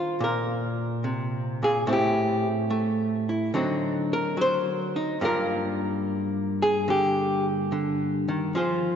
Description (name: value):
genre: solo jazz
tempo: 72 BPM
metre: 4/4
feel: swing 69% on 8ths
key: unclear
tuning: A4 = 440 Hz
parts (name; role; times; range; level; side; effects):
- archtop guitar, miked and amplified; solo; 0.0-9.0 s; G2 to C5; -23 LUFS; equal; none
room: wet church reverb, RT60 3.4 s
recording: recorded in a church or concert hall, nothing above 7.6 kHz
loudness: -23 LUFS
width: side -8 dB against mid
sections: 0.0-9.0 A section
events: hollow-body jazz guitar solo 0.0-9.0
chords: 0.0 Ebmaj7sus2; 1.9 Am; 3.5 D7b9; 5.2 Gm7